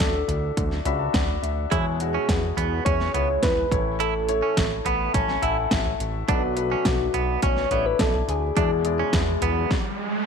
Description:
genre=piano-driven pop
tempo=105 BPM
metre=4/4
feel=straight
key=A major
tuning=A4 = 440 Hz
part: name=soft struck synth lead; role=melody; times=0.0-10.3 s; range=F#4 to C#5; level=-27 LUFS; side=equal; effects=chorus, slapback echo
part: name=clear concert grand piano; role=accompaniment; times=0.0-9.7 s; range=A2 to B5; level=-28 LUFS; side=left 10 dB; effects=none
part: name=fat analog bass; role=bass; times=0.0-9.7 s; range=A1 to E2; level=-28 LUFS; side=right 1 dB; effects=none
part: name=pop drum kit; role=drums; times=0.0-9.8 s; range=hi-hat, kick drum, snare drum, toms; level=-26 LUFS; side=right 1 dB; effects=overdrive
part: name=direct-recorded clean electric guitar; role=riff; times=1.7-9.7 s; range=B3 to E4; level=-28 LUFS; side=right 13 dB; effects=none
part: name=riser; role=sound effects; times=9.4-10.3 s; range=none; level=-30 LUFS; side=right 3 dB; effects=none
room=light reverb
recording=1960s-style stereo with parts hard left and right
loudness=-21 LUFS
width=side -6 dB against mid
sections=0.0-10.3 A section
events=grand piano fill 0.6-1.7, 4.6-6.3; riser 9.4-10.3; stop 9.7-10.3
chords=0.0 Dadd9; 1.7 E6; 3.7 A; 6.3 Bm7; 8.6 E7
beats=0.00 0.57 1.14 | 1.72 2.29 2.86 3.43 | 4.00 4.57 5.14 5.71 | 6.28 6.86 7.43 8.00 | 8.57 9.14 9.71

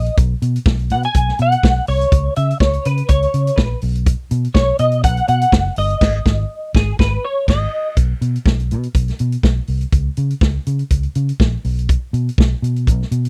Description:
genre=disco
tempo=123 BPM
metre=4/4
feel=straight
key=unclear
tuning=A4 = 440 Hz
part: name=semi-hollow electric guitar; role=accompaniment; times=0.0-7.9 s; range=G#4 to G#5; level=-21 LUFS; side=equal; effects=ensemble chorus
part: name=vintage muted fingered electric bass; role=bass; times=0.0-13.3 s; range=F#1 to C#3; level=-20 LUFS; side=equal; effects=none
part: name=vintage drum kit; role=drums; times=0.1-13.3 s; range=crash cymbal, hi-hat, kick drum, snare drum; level=-17 LUFS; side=equal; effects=none
room=little or no reverb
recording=dry, close 1970s-style studio recording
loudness=-17 LUFS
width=mono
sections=0.0-8.0 A section; 8.0-13.3 B section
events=clean electric guitar solo 0.0-8.0; band accent 6.0-8.0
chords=0.2 B5; 2.1 A#dim (rootless); 3.8 B5; 6.0 G#5; 8.0 N.C.; 11.6 B5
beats=| 0.18 0.66 1.15 1.64 | 2.12 2.61 3.10 3.58 | 4.07 4.56 5.04 5.53 | 6.02 6.51 6.99 7.48 | 7.97 8.46 8.95 9.44 | 9.93 10.42 10.91 11.40 | 11.89 12.38 12.87

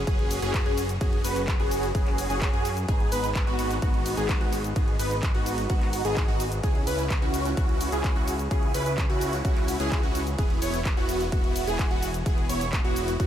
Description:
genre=EDM, festival progressive house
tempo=128 BPM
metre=4/4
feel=straight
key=G# minor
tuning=A4 = 440 Hz
part: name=fat analog bass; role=bass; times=0.0-13.3 s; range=E1 to F#2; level=-31 LUFS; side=equal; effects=sidechain pumping
part: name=plucky unison lead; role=arpeggios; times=0.1-13.3 s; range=F#4 to C#5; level=-32 LUFS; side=equal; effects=wide subtle chorus, sidechain pumping, analog delay
part: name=supersaw chords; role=riff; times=0.1-13.3 s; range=B3 to C#5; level=-30 LUFS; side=right 1 dB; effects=phaser, sidechain pumping, analog delay
part: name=big-room dance drum kit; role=drums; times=0.1-13.3 s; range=handclaps, hi-hat, ride cymbal, shaker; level=-35 LUFS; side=equal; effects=none
part: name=electronic kick drum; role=drums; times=0.1-13.3 s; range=none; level=-25 LUFS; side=equal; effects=none
room=light reverb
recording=none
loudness=-23 LUFS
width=side -10 dB against mid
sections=0.0-13.3 A section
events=none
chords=0.0 F#sus2; 2.9 G#m; 6.6 C#m; 10.4 E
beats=0.07 0.54 | 1.01 1.48 1.95 2.42 | 2.89 3.35 3.82 4.29 | 4.76 5.23 5.70 6.17 | 6.64 7.11 7.57 8.04 | 8.51 8.98 9.45 9.92 | 10.39 10.86 11.32 11.79 | 12.26 12.73 13.20

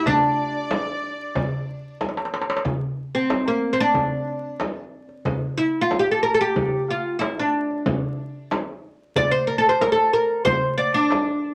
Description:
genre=Turkish makam ensemble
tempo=92 BPM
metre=4/4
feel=straight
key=D makam ussak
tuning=A4 = 440 Hz
part: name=oud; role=melody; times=0.0-11.5 s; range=Bb3 to D5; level=-22 LUFS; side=equal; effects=none
part: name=clear clarinet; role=second line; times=0.0-2.0 s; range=D5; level=-34 LUFS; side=equal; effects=none
part: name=rich studio violin section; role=second line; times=0.0-2.0 s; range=D5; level=-38 LUFS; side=equal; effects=none
part: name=darbuka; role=percussion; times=0.1-11.4 s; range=none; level=-31 LUFS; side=equal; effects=none
part: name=frame drum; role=percussion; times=0.1-11.3 s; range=none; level=-31 LUFS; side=equal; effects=none
room=moderate small room reverb, RT60 0.5 s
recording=vinyl crackle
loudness=-23 LUFS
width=mono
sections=0.0-2.7 A section; 2.7-11.5 B section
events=drum fill 2.0-2.7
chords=none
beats=| 0.07 0.72 1.36 2.01 | 2.66 3.31 3.96 4.61 | 5.26 5.91 6.56 7.21 | 7.86 8.51 9.16 9.81 | 10.46 11.11

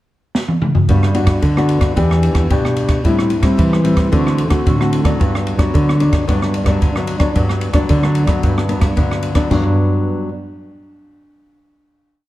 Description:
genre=samba and choro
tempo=111 BPM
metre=4/4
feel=straight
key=G major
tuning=A4 = 441 Hz
part: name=open jazz drum kit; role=drums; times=0.3-9.6 s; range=crash cymbal, kick drum, ride cymbal, rim click, snare drum, toms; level=-17 LUFS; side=equal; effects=none
part: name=nylon-string guitar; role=accompaniment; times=0.9-10.3 s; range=G2 to G4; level=-18 LUFS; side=left 2 dB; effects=none
part: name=nylon-string guitar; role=bass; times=0.9-9.8 s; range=E2 to E3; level=-18 LUFS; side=right 1 dB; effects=none
room=moderate large studio reverb, RT60 1.4 s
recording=heard from further back in the room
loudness=-13 LUFS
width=side -16 dB against mid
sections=0.0-0.9 pickup bar; 0.9-9.5 A section; 9.5-11.7 final chord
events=drum fill 0.4-0.9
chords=0.0 N.C.; 0.9 Gmaj7; 2.0 Em7; 3.0 Am7; 4.1 D7; 5.2 Gmaj7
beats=0.35 | 0.89 1.43 1.97 2.51 | 3.05 3.59 4.12 4.67 | 5.20 5.74 6.28 6.82 | 7.36 7.90 8.44 8.97 | 9.51 10.05

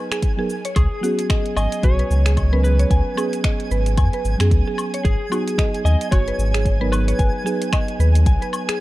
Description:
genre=organic downtempo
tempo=112 BPM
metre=4/4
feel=swing 59% on 16ths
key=G# minor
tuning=A4 = 440 Hz
part: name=muted felt-like synth keys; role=accompaniment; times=0.0-8.8 s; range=F#3 to A#4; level=-27 LUFS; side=right 2 dB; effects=chorus, sidechain pumping, tape echo
part: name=mallet-like synth pluck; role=arpeggios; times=0.0-8.8 s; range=F#4 to G#5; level=-27 LUFS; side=right 1 dB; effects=chorus, cassette tape, tape echo
part: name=twinkling granular texture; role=texture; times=0.0-8.8 s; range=G#5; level=-34 LUFS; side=right 4 dB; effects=built-in reverb
part: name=afro-pop drum kit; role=drums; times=0.1-8.8 s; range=cabasa, finger snaps, hi-hat, woodblock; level=-29 LUFS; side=left 1 dB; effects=none
part: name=electronic kick drum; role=drums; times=0.2-8.4 s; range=none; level=-19 LUFS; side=equal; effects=none
part: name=electric slide guitar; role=melody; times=0.8-7.7 s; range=G#4 to D#5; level=-28 LUFS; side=equal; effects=tape echo
part: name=warm sub bass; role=bass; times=0.8-8.4 s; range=F#1 to F#2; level=-17 LUFS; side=equal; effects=none
room=little or no reverb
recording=dark, warm production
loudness=-16 LUFS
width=side -17 dB against mid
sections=0.0-8.8 A section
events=none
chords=0.0 G#m7; 0.8 C#7sus4; 5.0 G#m7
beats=0.23 | 0.76 1.30 1.83 2.37 | 2.91 3.44 3.98 4.51 | 5.05 5.58 6.12 6.66 | 7.19 7.73 8.26 8.80

